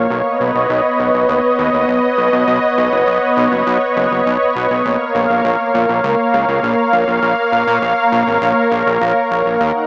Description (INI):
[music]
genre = synthwave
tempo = 101 BPM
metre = 4/4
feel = straight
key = Bb phrygian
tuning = A4 = 440 Hz
[part]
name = lush unison pad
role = sustained chords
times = 0.0-9.9 s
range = Eb3 to Gb5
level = -12 LUFS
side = equal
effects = chorus, shimmer reverb
[part]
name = fat analog bass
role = bass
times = 0.0-9.7 s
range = F#1 to Bb2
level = -20 LUFS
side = equal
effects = tube saturation
[sound]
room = wet plate reverb, RT60 3.5 s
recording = dreamy mix soaked in reverb, small speaker sound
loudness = -12 LUFS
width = side -31 dB against mid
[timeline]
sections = 0.0-9.9 A section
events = none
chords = 0.1 Badd9; 4.9 Bbm